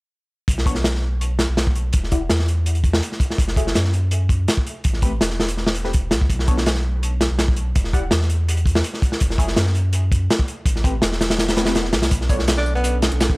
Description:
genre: drum and bass, jungle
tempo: 165 BPM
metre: 4/4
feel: straight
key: B minor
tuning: A4 = 440 Hz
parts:
  - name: soft dub sub bass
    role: bass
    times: 0.5-13.4 s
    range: E1 to F#2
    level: -21 LUFS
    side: equal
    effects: none
  - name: crunchy breakbeat drum kit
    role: drums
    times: 0.5-13.4 s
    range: hi-hat, kick drum, snare drum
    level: -19 LUFS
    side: equal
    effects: none
  - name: band-passed chord stab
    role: stabs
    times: 0.7-12.4 s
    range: F#3 to F#5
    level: -30 LUFS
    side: left 2 dB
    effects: phaser, dub echo
  - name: swell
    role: sound effects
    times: 11.6-12.1 s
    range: none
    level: -34 LUFS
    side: right 1 dB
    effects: none
  - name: warbly tape-like pad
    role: sustained chords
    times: 12.1-13.4 s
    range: B3 to A4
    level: -32 LUFS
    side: right 2 dB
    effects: chorus, built-in reverb
  - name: breakbeat sampler-style drum kit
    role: drums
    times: 12.1-13.3 s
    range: hi-hat, snare drum, tambourine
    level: -32 LUFS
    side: equal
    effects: high-pass filter on perc, high-pass filter on snare, high-pass filter on hats, high-pass filter on room
  - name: clear tenor saxophone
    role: melody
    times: 12.6-13.0 s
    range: B3 to D4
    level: -24 LUFS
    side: right 1 dB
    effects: dub echo
room: small room ambience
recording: dry, gritty hardware recording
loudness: -17 LUFS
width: side -24 dB against mid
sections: 0.5-13.4 A section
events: none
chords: 0.5 Bm9; 1.9 Em9; 3.4 F#m9; 4.8 Am9; 6.3 Bm9; 7.8 Em9; 9.2 F#m9; 10.7 Am9; 12.1 Bm9

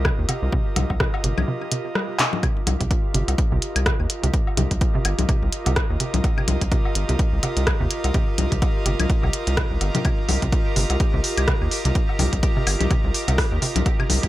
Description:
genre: minimal techno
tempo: 126 BPM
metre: 4/4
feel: swing 58% on 16ths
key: C minor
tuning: A4 = 440 Hz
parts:
  - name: rubbery square bass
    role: bass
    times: 0.0-14.3 s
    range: G1 to Eb2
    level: -23 LUFS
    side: equal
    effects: sidechain pumping
  - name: electronic kick drum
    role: drums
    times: 0.0-14.3 s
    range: none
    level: -22 LUFS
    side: equal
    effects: none
  - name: minimal click drum kit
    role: drums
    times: 0.0-14.3 s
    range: handclaps, hi-hat, rim click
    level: -25 LUFS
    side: equal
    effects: none
  - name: airy breathy pad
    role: texture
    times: 0.0-14.3 s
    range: F4 to Eb5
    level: -30 LUFS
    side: right 1 dB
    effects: chorus, sidechain pumping
  - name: pulsing gated texture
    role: texture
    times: 0.0-14.3 s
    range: G4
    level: -35 LUFS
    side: right 2 dB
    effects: chorus, built-in reverb, sidechain pumping
  - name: hollow square pluck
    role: riff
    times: 0.1-14.1 s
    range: C3 to G3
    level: -29 LUFS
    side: right 2 dB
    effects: chorus, sidechain pumping, digital delay
  - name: woodblock and congas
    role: percussion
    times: 0.1-14.2 s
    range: none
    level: -29 LUFS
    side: left 6 dB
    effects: digital delay
room: little or no reverb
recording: none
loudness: -19 LUFS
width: side -15 dB against mid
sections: 0.0-2.4 A section; 2.4-14.3 B section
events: drum fill 2.2; drop 2.4-14.3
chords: 0.0 Cm

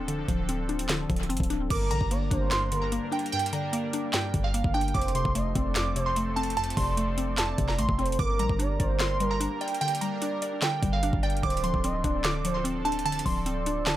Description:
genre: hip hop, trap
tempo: 148 BPM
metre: 4/4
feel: half-time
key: G minor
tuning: A4 = 440 Hz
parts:
  - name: mallet-like synth pluck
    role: accompaniment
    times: 0.0-14.0 s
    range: F2 to D5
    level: -32 LUFS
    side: left 3 dB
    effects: chorus, dub echo
  - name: sweeping resonant pad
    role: sustained chords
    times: 0.0-14.0 s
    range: F3 to Bb4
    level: -38 LUFS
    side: equal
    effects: chorus
  - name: warm 808-style bass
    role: bass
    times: 0.0-14.0 s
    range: D1 to Bb1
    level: -30 LUFS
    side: equal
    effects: none
  - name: trap drum kit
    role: drums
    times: 0.1-14.0 s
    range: crash cymbal, handclaps, hi-hat, kick drum, snare drum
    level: -31 LUFS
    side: equal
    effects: overdrive, dub echo
  - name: glassy digital keys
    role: melody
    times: 1.7-14.0 s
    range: F5 to D6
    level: -31 LUFS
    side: right 3 dB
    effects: chorus, dub echo
  - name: gliding portamento lead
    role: second line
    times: 1.7-14.0 s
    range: Bb4 to Eb5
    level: -35 LUFS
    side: right 4 dB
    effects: chorus, dub echo
room: little or no reverb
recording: echo-heavy mix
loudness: -25 LUFS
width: side -13 dB against mid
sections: 0.0-1.7 A section; 1.7-14.0 B section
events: break 0.0-1.7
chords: 0.0 Dm7; 1.7 Gm; 4.9 F; 8.2 Gm; 11.4 Dm7

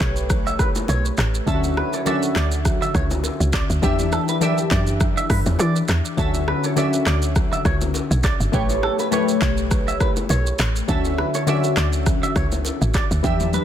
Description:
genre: afrobeats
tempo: 102 BPM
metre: 4/4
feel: swing 55% on 16ths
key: D major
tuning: A4 = 441 Hz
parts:
  - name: glassy digital keys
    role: accompaniment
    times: 0.0-13.6 s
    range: D3 to E5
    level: -23 LUFS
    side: left 2 dB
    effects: chorus
  - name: clean electric guitar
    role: riff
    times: 0.0-13.6 s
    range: G4 to E5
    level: -28 LUFS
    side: right 3 dB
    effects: ping-pong delay
  - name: woody log drum bass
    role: bass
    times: 0.0-13.6 s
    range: G1 to E3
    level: -22 LUFS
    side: equal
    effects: none
  - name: afro-pop drum kit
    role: drums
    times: 0.0-13.6 s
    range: handclaps, hi-hat, kick drum, rim click, shaker, toms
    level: -23 LUFS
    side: equal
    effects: none
  - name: congas and bongos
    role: percussion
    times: 0.3-13.6 s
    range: none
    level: -32 LUFS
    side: left 3 dB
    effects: none
room: digital ambience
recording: dense, heavily limited modern master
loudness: -18 LUFS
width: side -10 dB against mid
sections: 0.0-13.6 A section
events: drum fill 13.2-13.6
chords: 0.0 A9; 1.5 Dmaj9; 3.8 Em7; 6.2 Dmaj9; 8.5 A9; 10.9 Dmaj9

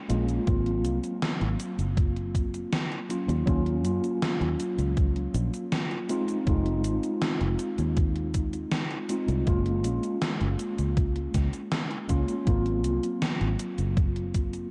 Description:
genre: vaporwave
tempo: 80 BPM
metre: 4/4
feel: straight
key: unclear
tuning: A4 = 444 Hz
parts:
  - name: mellow tine electric piano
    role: accompaniment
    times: 0.0-14.7 s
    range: Gb3 to F4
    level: -32 LUFS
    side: equal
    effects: subtle chorus, tape echo
  - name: fingered electric bass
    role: bass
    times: 0.1-14.6 s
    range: F1 to Gb2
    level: -31 LUFS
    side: equal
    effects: tube saturation
  - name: gated 80s digital drum machine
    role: drums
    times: 0.1-14.7 s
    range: cabasa, hi-hat, snare drum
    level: -35 LUFS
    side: equal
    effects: gated reverb, gated reverb snare, overdrive
  - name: electronic kick drum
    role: drums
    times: 0.5-14.5 s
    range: none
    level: -28 LUFS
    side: equal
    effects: overdrive
room: light reverb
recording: dark, warm production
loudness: -28 LUFS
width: mono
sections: 0.0-14.7 A section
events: none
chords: 0.5 Ab13; 3.1 Ebm9; 6.1 Fm7; 9.5 Gbmaj9; 12.5 Ab13

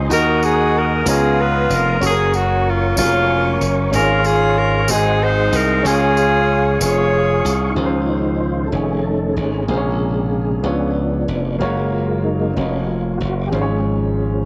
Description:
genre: slow gospel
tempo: 63 BPM (dotted quarters)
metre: 6/8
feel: straight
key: Db major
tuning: A4 = 440 Hz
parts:
  - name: clear grand piano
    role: accompaniment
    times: 0.0-14.5 s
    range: Ab2 to Bb5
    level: -26 LUFS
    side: equal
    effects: none
  - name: tonewheel organ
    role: sustained chords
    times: 0.0-14.4 s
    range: C3 to Eb6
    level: -26 LUFS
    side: equal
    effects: slow rotary speaker, overdrive, chorus vibrato
  - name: glassy slap bass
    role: bass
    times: 0.0-14.4 s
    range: F1 to Eb2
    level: -22 LUFS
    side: equal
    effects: transformer saturation
  - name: mellow saxophone section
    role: melody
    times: 0.1-7.7 s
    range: Bb3 to Db5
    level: -19 LUFS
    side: equal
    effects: tape echo
  - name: tambourine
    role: percussion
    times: 0.1-7.7 s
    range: none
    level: -30 LUFS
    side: equal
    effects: none
room: light reverb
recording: none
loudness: -17 LUFS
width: mono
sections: 0.0-7.8 A section; 7.8-14.5 B section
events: tonewheel organ solo 7.8-14.5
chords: 0.1 Ebm; 1.1 Db13; 2.0 Gb; 3.9 Db/Ab; 4.9 Ab7; 5.8 Db; 7.8 Dbmaj7; 8.7 F7alt; 9.7 Bbm7; 10.6 Db7b9; 11.6 Gbmaj7; 13.5 Db/Ab

